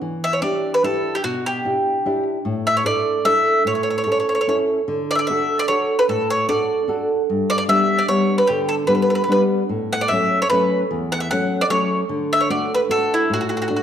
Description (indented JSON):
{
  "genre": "italian folk, Italian serenade",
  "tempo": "149 BPM",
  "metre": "3/4",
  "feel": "swing 55% on 8ths",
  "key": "D major",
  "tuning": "A4 = 441 Hz",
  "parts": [
    { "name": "nylon-string guitar", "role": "accompaniment", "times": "0.0-13.8 s", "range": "E2 to A4", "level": "-20 LUFS", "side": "equal", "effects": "none" },
    { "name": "bowl-back mandolin", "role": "melody", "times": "0.2-13.8 s", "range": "E4 to F#5", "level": "-19 LUFS", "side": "equal", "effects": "none" }
  ],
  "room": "wet recital hall reverb, RT60 1.3 s",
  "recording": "dark, warm production",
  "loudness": "-17 LUFS",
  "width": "side -9 dB against mid",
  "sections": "0.0-13.8 A section",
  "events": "none",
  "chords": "0.0 Em7; 2.4 Asus4; 3.7 A; 4.9 D; 7.3 G; 9.7 A6; 12.1 D"
}